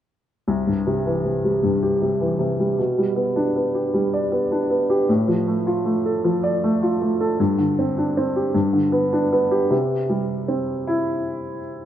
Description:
pop; 52 BPM (dotted quarters); 6/8; straight; C major; A4 = 444 Hz
warm baby grand piano; accompaniment; 0.5-11.9 s; C2 to D5; -19 LUFS; equal
moderate plate reverb, RT60 2.5 s; rough home demo mix, nothing above 10.9 kHz; -19 LUFS; side -11 dB against mid
0.5-9.7 A section; 9.7-11.9 B section
0.5 C; 2.8 G/B; 5.1 Dm/A; 7.4 Gsus4; 8.6 G; 9.7 C

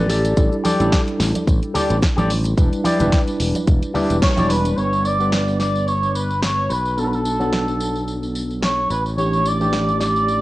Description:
nu-disco, nu disco; 109 BPM; 4/4; swing 55% on 16ths; A4 = 439 Hz
tine electric piano; accompaniment; 0.0-10.4 s; E3 to D5; -23 LUFS; equal; medium stereo tremolo, sidechain pumping, cassette tape
electric guitar with an envelope filter; riff; 0.0-4.7 s; E4 to D5; -23 LUFS; left 1 dB; lush chorus, cassette tape
modern bright fingered electric bass; bass; 0.0-10.4 s; E1 to B1; -22 LUFS; equal
house drum kit; drums; 0.1-10.4 s; hi-hat, snare drum, tambourine; -26 LUFS; equal; cassette tape
maracas and congas; percussion; 0.2-4.8 s; -25 LUFS; right 1 dB
electronic kick drum; drums; 0.4-4.3 s; -17 LUFS; equal; cassette tape
muted trumpet section; melody; 4.2-10.4 s; A4 to D5; -21 LUFS; right 1 dB; cassette tape
moderate studio reverb, RT60 0.7 s; home recording on cassette; -16 LUFS; side -17 dB against mid
0.0-4.8 A section; 4.8-10.4 B section
clean electric guitar fill 0.0-0.4; band accent 4.2
0.1 A7sus4; 2.6 Em7; 4.8 G; 6.7 Bm7; 8.9 A7sus4

